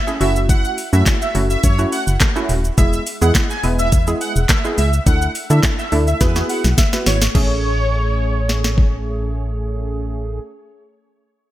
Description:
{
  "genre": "dance-pop",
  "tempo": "105 BPM",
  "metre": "4/4",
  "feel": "straight",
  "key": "A major",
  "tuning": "A4 = 444 Hz",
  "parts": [
    { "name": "soft supersaw", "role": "melody", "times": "0.0-9.0 s", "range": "B4 to G#5", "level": "-24 LUFS", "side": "right 1 dB", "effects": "wide subtle chorus, digital delay" },
    { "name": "funky polysynth comp", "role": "accompaniment", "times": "0.1-10.4 s", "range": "G#3 to B4", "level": "-23 LUFS", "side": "right 1 dB", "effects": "chorus, sidechain pumping" },
    { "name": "smooth R&B drum kit", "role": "drums", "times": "0.1-8.9 s", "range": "crash cymbal, handclaps, hi-hat, kick drum, shaker, snare drum", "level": "-17 LUFS", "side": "equal", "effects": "gated reverb" },
    { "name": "organ-like FM bass", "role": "bass", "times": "0.2-10.4 s", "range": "D#1 to D3", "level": "-18 LUFS", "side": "equal", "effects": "sidechain pumping" }
  ],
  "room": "light reverb",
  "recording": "bright 1980s-style digital production",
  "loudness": "-15 LUFS",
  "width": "side -14 dB against mid",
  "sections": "0.0-7.3 A section; 7.3-9.6 B section",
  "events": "drop 0.0-7.3; drum fill 6.2-7.3",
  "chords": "0.2 F#m7; 2.8 E; 5.1 Dsus2; 6.2 Eadd9; 7.3 Amaj7"
}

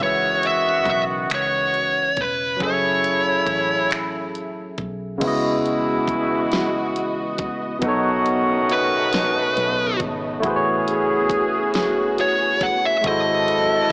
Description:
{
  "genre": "slow six-eight R&B",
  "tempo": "46 BPM (dotted quarters)",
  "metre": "6/8",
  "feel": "straight",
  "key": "C# minor",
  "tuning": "A4 = 440 Hz",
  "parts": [
    { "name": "fuzz lead guitar", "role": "melody", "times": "0.0-3.9, 8.7-13.9 s", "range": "B4 to F#5", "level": "-19 LUFS", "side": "equal", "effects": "distortion, slapback echo" },
    { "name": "barky tine electric piano", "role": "accompaniment", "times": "0.0-13.9 s", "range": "B2 to E5", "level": "-24 LUFS", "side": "equal", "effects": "none" },
    { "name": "mellow horn section", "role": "stabs", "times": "0.0-13.9 s", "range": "B2 to A4", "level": "-24 LUFS", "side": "equal", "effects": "none" },
    { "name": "vintage muted fingered electric bass", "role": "bass", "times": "0.0-13.9 s", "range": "E1 to C#2", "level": "-35 LUFS", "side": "equal", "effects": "none" },
    { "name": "smooth R&B drum kit", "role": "drums", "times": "0.0-13.7 s", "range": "crash cymbal, finger snaps, hi-hat, kick drum, snare drum", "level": "-28 LUFS", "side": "equal", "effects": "none" },
    { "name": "dark studio string section", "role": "sustained chords", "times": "5.2-13.9 s", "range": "B#2 to D#5", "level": "-27 LUFS", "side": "equal", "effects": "none" }
  ],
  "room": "light reverb",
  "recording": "small speaker sound",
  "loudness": "-18 LUFS",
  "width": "side -39 dB against mid",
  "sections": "0.0-5.2 A section; 5.2-13.9 B section",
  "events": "none",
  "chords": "0.0 C#m9; 2.6 F#m9; 5.2 C#m11; 7.8 B9; 10.4 Amaj13; 13.0 G#7b9b13"
}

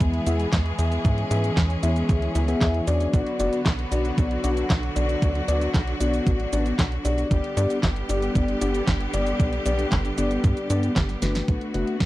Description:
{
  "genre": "italo disco",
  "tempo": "115 BPM",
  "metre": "4/4",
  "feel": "straight",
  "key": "B minor",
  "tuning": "A4 = 440 Hz",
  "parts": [
    { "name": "bright studio string section", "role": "sustained chords", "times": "0.0-12.1 s", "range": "D3 to G#4", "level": "-30 LUFS", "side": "right 1 dB", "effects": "none" },
    { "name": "mellow tine electric piano", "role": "stabs", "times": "0.0-11.9 s", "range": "A3 to E5", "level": "-26 LUFS", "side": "left 2 dB", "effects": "phaser, tape echo" },
    { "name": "tight sequencer bass", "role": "bass", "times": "0.0-12.1 s", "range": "F#1 to G#2", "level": "-25 LUFS", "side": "equal", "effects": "none" },
    { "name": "electronic kick drum", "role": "drums", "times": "0.0-12.1 s", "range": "none", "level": "-22 LUFS", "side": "equal", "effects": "overdrive" },
    { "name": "house drum kit", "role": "drums", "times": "0.0-12.1 s", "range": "cabasa, handclaps, hi-hat, snare drum", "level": "-29 LUFS", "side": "right 1 dB", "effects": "none" }
  ],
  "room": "little or no reverb",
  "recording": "dry, close 1970s-style studio recording",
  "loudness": "-21 LUFS",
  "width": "side -16 dB against mid",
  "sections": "0.0-11.5 A section",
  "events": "drum fill 11.2",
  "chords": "0.0 E; 3.1 Bm; 7.3 G; 11.5 Bm7"
}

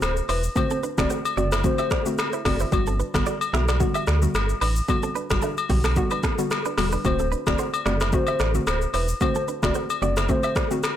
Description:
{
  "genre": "afrobeats",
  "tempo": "111 BPM",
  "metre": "4/4",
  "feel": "swing 55% on 16ths",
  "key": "D mixolydian",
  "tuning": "A4 = 440 Hz",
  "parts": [
    { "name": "hollow clarinet-like synth lead", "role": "melody", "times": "0.0-2.6, 7.1-10.7 s", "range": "B4 to D5", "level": "-29 LUFS", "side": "left 2 dB", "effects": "chorus, tape echo" },
    { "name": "hollow square pluck", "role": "accompaniment", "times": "0.0-10.8 s", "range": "D3 to F#4", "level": "-27 LUFS", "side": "left 1 dB", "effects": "chorus" },
    { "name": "sub bass with octave", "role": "bass", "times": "0.0-10.3 s", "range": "D1 to D2", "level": "-24 LUFS", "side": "equal", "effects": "none" },
    { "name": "deep house drum kit", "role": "drums", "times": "0.0-11.0 s", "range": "finger snaps, hi-hat, kick drum, rim click, shaker", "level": "-26 LUFS", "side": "equal", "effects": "overdrive, soft clipping on snare" },
    { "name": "agogo bells and woodblock", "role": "percussion", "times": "0.0-11.0 s", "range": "none", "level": "-30 LUFS", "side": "left 6 dB", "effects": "none" },
    { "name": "direct-recorded clean electric guitar", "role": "riff", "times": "0.3-10.7 s", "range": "B3 to E5", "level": "-32 LUFS", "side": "right 8 dB", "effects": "tape echo" }
  ],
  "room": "digital ambience",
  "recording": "blown-out, overdriven recording, overdrive",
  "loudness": "-21 LUFS",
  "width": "side -11 dB against mid",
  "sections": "0.0-11.0 A section",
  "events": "none",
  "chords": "0.0 D7; 2.7 Gmaj7; 7.0 D7"
}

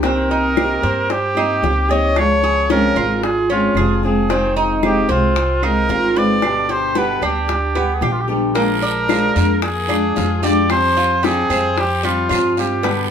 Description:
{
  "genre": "latin, Cuban son and guajira",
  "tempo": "112 BPM",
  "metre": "4/4",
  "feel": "straight",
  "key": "C minor",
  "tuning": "A4 = 444 Hz",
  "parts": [
    { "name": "clear trumpet", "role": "melody", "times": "0.0-13.1 s", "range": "F4 to Eb5", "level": "-19 LUFS", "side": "right 1 dB", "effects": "none" },
    { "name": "nylon-string guitar", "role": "accompaniment", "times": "0.0-13.1 s", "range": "B2 to G4", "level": "-20 LUFS", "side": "left 2 dB", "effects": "none" },
    { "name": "Cuban tres", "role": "arpeggios", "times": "0.0-13.1 s", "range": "G3 to Db5", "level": "-21 LUFS", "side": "right 2 dB", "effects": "none" },
    { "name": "upright bass", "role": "bass", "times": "0.0-13.1 s", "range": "F1 to G2", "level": "-23 LUFS", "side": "equal", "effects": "none" },
    { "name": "bongos", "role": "percussion", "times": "0.0-13.1 s", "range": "none", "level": "-24 LUFS", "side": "left 5 dB", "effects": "none" },
    { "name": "claves", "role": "percussion", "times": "0.6-12.6 s", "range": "none", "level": "-28 LUFS", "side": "right 5 dB", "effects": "none" },
    { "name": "guiro", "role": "percussion", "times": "8.6-13.1 s", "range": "none", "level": "-30 LUFS", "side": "right 6 dB", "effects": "none" }
  ],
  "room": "wet studio reverb, RT60 0.5 s",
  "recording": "band playing live in one room",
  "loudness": "-14 LUFS",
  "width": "side -8 dB against mid",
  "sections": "0.0-13.1 A section",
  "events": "none",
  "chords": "0.0 Cm7; 2.2 Dbmaj7; 4.3 Fm7; 6.4 G; 8.6 Bb7; 10.7 Fsus2"
}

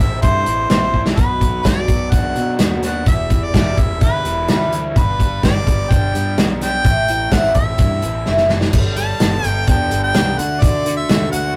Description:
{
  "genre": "folk rock and heartland rock",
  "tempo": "127 BPM",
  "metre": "4/4",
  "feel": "straight",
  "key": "unclear",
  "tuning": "A4 = 440 Hz",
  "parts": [
    { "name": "warm harmonica", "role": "melody", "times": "0.0-11.5 s", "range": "B4 to A5", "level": "-23 LUFS", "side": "equal", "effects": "none" },
    { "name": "picked twelve-string acoustic guitar", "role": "accompaniment", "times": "0.0-11.6 s", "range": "E2 to A4", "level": "-27 LUFS", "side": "equal", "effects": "none" },
    { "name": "raw garage guitar", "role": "riff", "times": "0.0-11.6 s", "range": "E2 to A4", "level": "-28 LUFS", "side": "equal", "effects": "overdrive" },
    { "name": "fingered electric bass", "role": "bass", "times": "0.0-11.5 s", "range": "E1 to B2", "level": "-26 LUFS", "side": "equal", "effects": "none" },
    { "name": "natural country drum kit", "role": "drums", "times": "0.2-11.4 s", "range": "crash cymbal, hi-hat, kick drum, snare drum", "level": "-19 LUFS", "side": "equal", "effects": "none" },
    { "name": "mellow reed electric piano", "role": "accompaniment", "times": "8.7-11.5 s", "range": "F#4 to D5", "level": "-34 LUFS", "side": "equal", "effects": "fast tremolo" }
  ],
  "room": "moderate booth ambience, RT60 0.2 s",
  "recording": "rough rehearsal-room recording, warm saturation",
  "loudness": "-16 LUFS",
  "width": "mono",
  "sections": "0.0-8.7 A section; 8.7-11.6 B section",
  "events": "drum fill 0.9, 8.3-8.7",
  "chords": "0.0 Am; 1.2 Bm; 3.1 Em; 5.0 G; 6.9 Am; 8.7 Gadd9; 10.4 D"
}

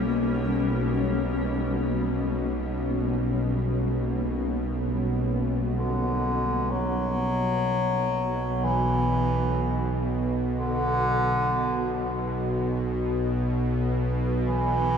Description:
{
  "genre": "dark ambient drone",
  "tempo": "free time",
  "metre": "none",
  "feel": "none",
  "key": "unclear",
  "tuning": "A4 = 441 Hz",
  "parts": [
    { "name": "granular cloud pad", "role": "sustained chords", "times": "0.0-6.7 s", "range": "G3 to C#4", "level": "-30 LUFS", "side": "left 2 dB", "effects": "built-in reverb" },
    { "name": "bowed-like drone", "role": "drone", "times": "0.0-15.0 s", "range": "B1 to B2", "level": "-26 LUFS", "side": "equal", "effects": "built-in reverb" },
    { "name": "clear bass clarinet", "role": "melody", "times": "5.8-15.0 s", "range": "D3 to F#3", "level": "-26 LUFS", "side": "equal", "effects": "analog delay" }
  ],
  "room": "wet echo chamber reverb, RT60 2.1 s",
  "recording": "echo-heavy mix",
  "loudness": "-24 LUFS",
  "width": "side -7 dB against mid",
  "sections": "0.0-6.7 A section; 6.7-15.0 A section",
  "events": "none",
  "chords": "0.0 Gm; 6.7 N.C."
}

